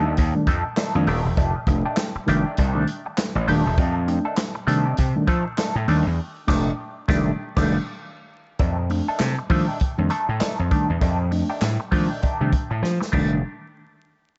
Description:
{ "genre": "funk", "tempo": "100 BPM", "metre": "4/4", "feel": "swing 60% on 16ths", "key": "F mixolydian", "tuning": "A4 = 440 Hz", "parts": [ { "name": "semi-hollow electric guitar", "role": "accompaniment", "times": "0.0-13.3 s", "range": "Eb3 to A4", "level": "-30 LUFS", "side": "equal", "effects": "wah, spring reverb" }, { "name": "mellow tine electric piano", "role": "stabs", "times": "0.0-13.4 s", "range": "Eb3 to D4", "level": "-28 LUFS", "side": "equal", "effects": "none" }, { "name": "gritty slap bass", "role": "bass", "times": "0.0-13.4 s", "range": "Eb1 to F3", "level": "-25 LUFS", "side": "equal", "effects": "overdrive" }, { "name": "swinging big-band drum kit", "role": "drums", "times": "0.2-13.3 s", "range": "crash cymbal, handclaps, hi-hat, kick drum, snare drum", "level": "-27 LUFS", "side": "equal", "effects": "none" } ], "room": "light reverb", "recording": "dark, warm production, vinyl crackle, nothing above 7.9 kHz", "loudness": "-22 LUFS", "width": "mono", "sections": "0.0-8.6 A section; 8.6-13.4 B section", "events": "band accent 6.2-8.6; break 7.4-8.6; drum fill 12.8-13.4", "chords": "0.0 F13; 13.4 N.C.", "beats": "0.17 0.77 | 1.37 1.97 2.58 3.18 | 3.78 4.38 4.98 5.58 | 6.19 6.79 7.39 7.99 | 8.60 9.20 9.80 10.41 | 11.01 11.62 12.22 12.83" }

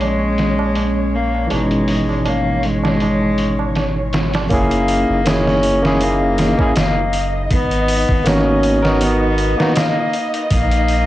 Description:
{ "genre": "trip hop", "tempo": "80 BPM", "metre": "4/4", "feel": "swing 55% on 16ths", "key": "G# minor", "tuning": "A4 = 440 Hz", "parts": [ { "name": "rich cello", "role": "melody", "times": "0.0-11.1 s", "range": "G#3 to C#4", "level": "-19 LUFS", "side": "left 1 dB", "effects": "vintage 12-bit sampler grit, cassette tape, tape echo" }, { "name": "barky tine electric piano", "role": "accompaniment", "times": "0.0-9.7 s", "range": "B2 to A#4", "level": "-20 LUFS", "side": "equal", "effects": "harmonic tremolo, vintage 12-bit sampler grit, cassette tape, tape echo" }, { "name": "string machine, cellos", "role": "sustained chords", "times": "0.0-11.1 s", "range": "C#5 to D#5", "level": "-25 LUFS", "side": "equal", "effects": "ensemble chorus, cassette tape" }, { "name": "soft dub sub bass", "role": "bass", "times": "0.0-11.1 s", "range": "F#1 to A#1", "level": "-21 LUFS", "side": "equal", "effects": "none" }, { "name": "trip hop sampler-style drum kit", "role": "drums", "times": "0.0-11.1 s", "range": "hi-hat, kick drum, snare drum", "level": "-21 LUFS", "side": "equal", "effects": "low-pass filter on hats, low-pass filter on snare, low-pass filter on kick, low-pass filter on room" }, { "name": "tabla", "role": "percussion", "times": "0.0-4.5 s", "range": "none", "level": "-29 LUFS", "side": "right 10 dB", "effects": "none" }, { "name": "bowed-like drone", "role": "texture", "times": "0.4-4.5 s", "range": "C#4", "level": "-34 LUFS", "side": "right 1 dB", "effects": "none" } ], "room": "moderate booth ambience, RT60 0.2 s", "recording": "home recording on cassette", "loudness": "-14 LUFS", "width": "side -14 dB against mid", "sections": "0.0-4.5 A section; 4.5-11.1 B section", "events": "none", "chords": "0.0 A#m7; 1.5 C#m7/G#; 4.5 F#9; 7.5 G#m9; 10.5 N.C.", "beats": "0.01 0.76 | 1.51 2.26 3.01 3.76 | 4.51 5.26 6.01 6.76 | 7.51 8.26 9.01 9.76 | 10.51" }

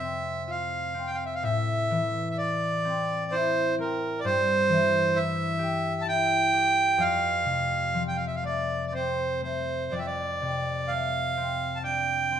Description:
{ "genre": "celtic folk, Celtic slow air", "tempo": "60-67 BPM", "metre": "3/4", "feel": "rubato", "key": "unclear", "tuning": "A4 = 440 Hz", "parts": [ { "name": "accordion", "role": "melody", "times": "0.0-12.4 s", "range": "Bb4 to A5", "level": "-25 LUFS", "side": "right 3 dB", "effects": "none" }, { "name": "concert harp", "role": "accompaniment", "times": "0.0-12.4 s", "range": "F2 to G4", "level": "-30 LUFS", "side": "left 4 dB", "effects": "none" } ], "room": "moderate recital hall reverb, RT60 1.2 s", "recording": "minimal, uncompressed stereo recording", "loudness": "-24 LUFS", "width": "side -9 dB against mid", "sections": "0.0-12.4 A section", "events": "none", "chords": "0.0 F; 1.4 Am; 4.2 C/G; 7.0 F; 9.9 F6", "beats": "0.47 | 1.43 2.38 3.32 | 4.25 5.16 6.07 | 7.00 7.95 8.93 | 9.92 10.89 11.83" }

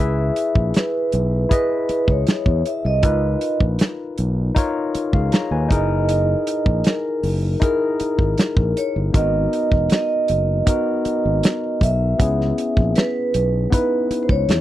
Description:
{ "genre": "lush 1970s-style soul", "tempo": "79 BPM", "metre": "4/4", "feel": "straight", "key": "C# dorian", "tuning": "A4 = 438 Hz", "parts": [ { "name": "vibraphone with soft mallets", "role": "melody", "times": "0.0-14.6 s", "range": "A#4 to E5", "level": "-22 LUFS", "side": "right 2 dB", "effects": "none" }, { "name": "barky tine electric piano", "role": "accompaniment", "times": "0.0-14.6 s", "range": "A#3 to A#5", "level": "-24 LUFS", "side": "left 4 dB", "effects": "none" }, { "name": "overdriven fingered electric bass", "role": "bass", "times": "0.0-14.6 s", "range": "E1 to E2", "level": "-20 LUFS", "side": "equal", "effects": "none" }, { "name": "warm soul drum kit", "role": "drums", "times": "0.4-14.6 s", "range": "hi-hat, kick drum, snare drum", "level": "-18 LUFS", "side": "equal", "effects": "none" } ], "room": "little or no reverb", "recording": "dry, close 1970s-style studio recording", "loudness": "-17 LUFS", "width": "side -14 dB against mid", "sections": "0.0-14.6 A section", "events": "none", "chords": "0.0 C#m7; 3.0 C#13; 5.7 F#13; 9.1 G#m9; 12.2 C#m7", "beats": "0.75 1.51 2.27 | 3.03 3.80 4.56 5.32 | 6.09 6.85 7.61 8.38 | 9.14 9.90 10.67 11.43 | 12.20 12.96 13.72 14.49" }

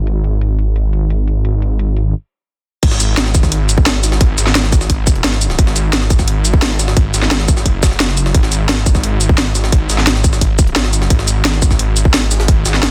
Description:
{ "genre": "dark technical drum and bass", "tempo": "174 BPM", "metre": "4/4", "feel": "straight", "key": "unclear", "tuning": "A4 = 440 Hz", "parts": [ { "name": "detuned saw bass", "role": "bass", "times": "0.0-12.9 s", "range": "F#1 to G#1", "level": "-17 LUFS", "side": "equal", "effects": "chorus, sidechain pumping" }, { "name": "drum and bass drum kit", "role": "drums", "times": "0.1-12.9 s", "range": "crash cymbal, hi-hat, shaker, snare drum", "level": "-19 LUFS", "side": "equal", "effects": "low-pass filter on hats, studio reverb, low-pass filter on cymbals, low-pass filter on perc, low-pass filter on snare" }, { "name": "electronic kick drum", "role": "drums", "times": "2.8-12.6 s", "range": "none", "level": "-14 LUFS", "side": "equal", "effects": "studio reverb" }, { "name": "jungle sampler-style drum kit", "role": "drums", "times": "2.8-12.9 s", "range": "hi-hat, snare drum", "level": "-26 LUFS", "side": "equal", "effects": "high-pass filter on hats, studio reverb, high-pass filter on snare" } ], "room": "little or no reverb", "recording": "dense, heavily limited modern master", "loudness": "-14 LUFS", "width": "mono", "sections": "0.0-2.8 A section; 2.8-12.9 B section", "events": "stop 2.1-2.8; drop 2.8-12.9", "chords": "none", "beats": "| 0.07 0.41 0.76 1.10 | 1.45 1.79 2.14 2.48 | 2.83 3.17 3.52 3.86 | 4.21 4.55 4.90 5.24 | 5.59 5.93 6.28 6.62 | 6.97 7.31 7.66 8.00 | 8.35 8.69 9.04 9.38 | 9.72 10.07 10.41 10.76 | 11.10 11.45 11.79 12.14 | 12.48 12.83" }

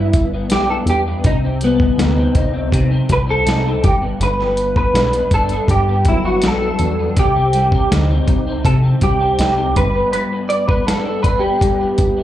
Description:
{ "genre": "indie pop, bedroom pop", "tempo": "81 BPM", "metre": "4/4", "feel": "straight", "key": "G major", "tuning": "A4 = 440 Hz", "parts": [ { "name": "electric guitar through a small old amp", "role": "melody", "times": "0.0-12.2 s", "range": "B3 to D5", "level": "-18 LUFS", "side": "equal", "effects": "ensemble chorus, slapback echo, tape echo" }, { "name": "electric guitar through a small old amp", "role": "accompaniment", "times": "0.0-12.2 s", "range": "G2 to Eb4", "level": "-22 LUFS", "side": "left 2 dB", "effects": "ensemble chorus, vibrato effect, slapback echo" }, { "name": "plucky analog bass", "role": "bass", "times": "0.0-10.1 s", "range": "G1 to C3", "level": "-18 LUFS", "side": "equal", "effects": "none" }, { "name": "dusty soul sampler-style drum kit", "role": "drums", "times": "0.1-12.2 s", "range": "hi-hat, kick drum, snare drum", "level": "-18 LUFS", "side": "equal", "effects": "none" } ], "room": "moderate club reverb, RT60 0.7 s", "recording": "live gig heard through the venue's PA, club reverb", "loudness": "-13 LUFS", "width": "side -12 dB against mid", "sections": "0.0-12.2 A section", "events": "clean electric guitar solo 0.0-12.2", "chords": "0.0 G; 1.3 Cm; 3.8 Gmaj7; 7.2 Cm; 9.8 G", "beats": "0.51 | 1.25 1.99 2.73 3.47 | 4.21 4.95 5.69 6.43 | 7.17 7.91 8.65 9.39 | 10.13 10.88 11.62" }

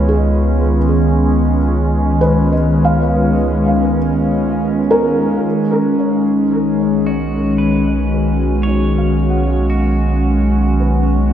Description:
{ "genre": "ambient", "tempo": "56 BPM", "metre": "3/4", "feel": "straight", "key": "B lydian", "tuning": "A4 = 441 Hz", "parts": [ { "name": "warbly tape-like pad", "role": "sustained chords", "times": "0.0-11.3 s", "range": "D#3 to F#4", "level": "-15 LUFS", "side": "left 1 dB", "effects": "chorus, built-in reverb, phaser" }, { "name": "felt-muted upright piano", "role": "arpeggios", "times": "0.0-11.3 s", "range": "G#4 to F#5", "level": "-22 LUFS", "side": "right 1 dB", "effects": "wide subtle chorus, diffuse ambient delay" }, { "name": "round analog bass", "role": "bass", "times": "0.0-11.3 s", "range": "B1 to C#2", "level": "-17 LUFS", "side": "right 1 dB", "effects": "none" }, { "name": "analog drone", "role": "drone", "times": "0.2-11.3 s", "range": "B3", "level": "-26 LUFS", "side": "right 3 dB", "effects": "none" }, { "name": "pedal steel guitar", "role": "melody", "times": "7.1-10.7 s", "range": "F#4 to C#5", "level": "-30 LUFS", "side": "right 1 dB", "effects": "diffuse ambient delay" } ], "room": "wet lush hall reverb, RT60 3.1 s", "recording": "dreamy mix soaked in reverb, nothing above 10.9 kHz", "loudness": "-12 LUFS", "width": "side -10 dB against mid", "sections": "0.0-5.5 A section; 5.5-11.3 B section", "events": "fade-in on pedal steel guitar 5.5-11.3", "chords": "0.0 C#13; 5.5 B69", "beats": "0.09 1.15 | 2.21 3.29 4.37 | 5.45 6.53 7.60 | 8.67 9.73 10.80" }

